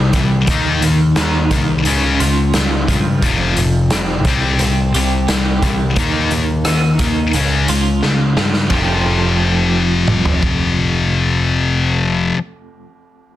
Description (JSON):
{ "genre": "quiet-loud alternative rock", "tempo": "88 BPM", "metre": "4/4", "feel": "straight", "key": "F major", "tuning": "A4 = 441 Hz", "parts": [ { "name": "twelve-string electric guitar", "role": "arpeggios", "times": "0.0-12.4 s", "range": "F2 to G4", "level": "-22 LUFS", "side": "right 4 dB", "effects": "tremolo, digital delay" }, { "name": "high-gain distorted guitar", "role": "riff", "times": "0.0-12.4 s", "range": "F2 to Eb4", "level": "-17 LUFS", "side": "left 4 dB", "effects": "distortion" }, { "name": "growling picked electric bass", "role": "bass", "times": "0.0-12.3 s", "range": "F1 to G2", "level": "-19 LUFS", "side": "right 1 dB", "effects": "overdrive" }, { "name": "raw garage drum kit", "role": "drums", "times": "0.1-10.6 s", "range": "hi-hat, kick drum, ride cymbal, rim click, snare drum, toms", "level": "-19 LUFS", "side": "equal", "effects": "soft clipping on snare" } ], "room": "little or no reverb", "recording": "dense, heavily limited modern master", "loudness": "-13 LUFS", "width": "side -13 dB against mid", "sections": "0.0-8.7 A section; 8.7-11.5 B section", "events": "drum fill 8.0-8.7", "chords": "0.5 Eb5; 1.9 Db; 3.2 F5; 4.3 C; 6.0 Eb5; 7.3 Db; 8.7 F", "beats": "| 0.48 1.17 1.86 2.54 | 3.23 3.91 4.60 5.28 | 5.97 6.66 7.34 8.03 | 8.71 9.40 10.09 10.77" }